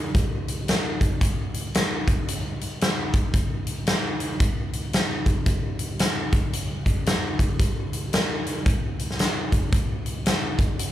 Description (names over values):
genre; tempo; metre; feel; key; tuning
rock; 113 BPM; 4/4; swing 62% on 8ths; none; none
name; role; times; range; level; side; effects
big rock drum kit; drums; 0.1-10.9 s; hi-hat, kick drum, snare drum; -22 LUFS; equal; none
room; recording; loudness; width
light reverb; live gig heard through the venue's PA, club reverb; -22 LUFS; side -13 dB against mid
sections
0.0-10.9 A section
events
none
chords
none